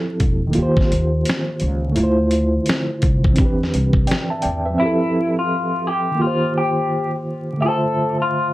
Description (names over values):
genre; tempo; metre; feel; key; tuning
lo-fi hip hop; 85 BPM; 4/4; swing 66% on 16ths; unclear; A4 = 441 Hz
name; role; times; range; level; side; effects
reed electric piano; accompaniment; 0.0-8.5 s; D3 to A5; -20 LUFS; right 1 dB; fast tremolo, cassette tape, low-pass filter
upright bass; bass; 0.2-4.7 s; E1 to E2; -20 LUFS; equal; none
dusty soul sampler-style drum kit; drums; 0.2-4.6 s; finger snaps, hi-hat, kick drum, snare drum; -19 LUFS; equal; vintage 12-bit sampler grit
electric guitar through a small old amp; melody; 4.8-8.5 s; E4 to A4; -20 LUFS; left 2 dB; harmonic tremolo, low-pass filter
room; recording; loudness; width
moderate studio reverb, RT60 0.6 s; vinyl crackle; -16 LUFS; side -16 dB against mid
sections
0.0-4.8 A section; 4.8-8.5 B section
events
none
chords
0.0 Fmaj9; 0.5 Eb6; 2.0 Dm7; 3.4 Cmaj9; 4.8 Fmaj9; 6.2 Eb6; 7.6 Dm7